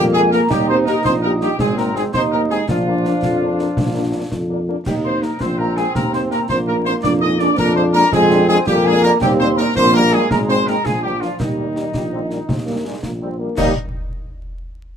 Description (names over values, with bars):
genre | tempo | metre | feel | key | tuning
military-style march for wind band | 110 BPM (dotted quarters) | 6/8 | straight | Eb major | A4 = 440 Hz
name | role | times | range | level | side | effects
clear trumpet section | melody | 0.0-13.7 s | Eb4 to Eb5 | -22 LUFS | left 1 dB | none
dark euphonium | second line | 0.0-13.7 s | Eb3 to Eb4 | -22 LUFS | right 3 dB | none
mellow hollow flute section | second line | 0.0-13.8 s | Eb5 to Eb6 | -22 LUFS | equal | none
clear trombone section | sustained chords | 0.0-13.7 s | F3 to Eb4 | -23 LUFS | equal | none
warm tuba | bass | 0.0-13.7 s | Ab1 to F2 | -20 LUFS | equal | none
mellow French horn section | accompaniment | 0.1-13.7 s | F3 to Ab4 | -26 LUFS | left 4 dB | none
concert snare drum, clash cymbals and concert bass drum | drums | 0.3-13.8 s | none | -25 LUFS | equal | none
room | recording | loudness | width
light reverb | minimal, uncompressed stereo recording, vinyl crackle | -15 LUFS | side -8 dB against mid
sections
0.0-13.6 A section; 13.6-14.7 B section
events
none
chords
0.0 Bb7(no3)/F; 0.5 Eb; 1.6 Ab; 2.7 Bb; 4.9 Eb5; 7.0 Bb7/F; 9.2 Eb; 10.3 Ab; 10.9 Bb; 11.4 Eb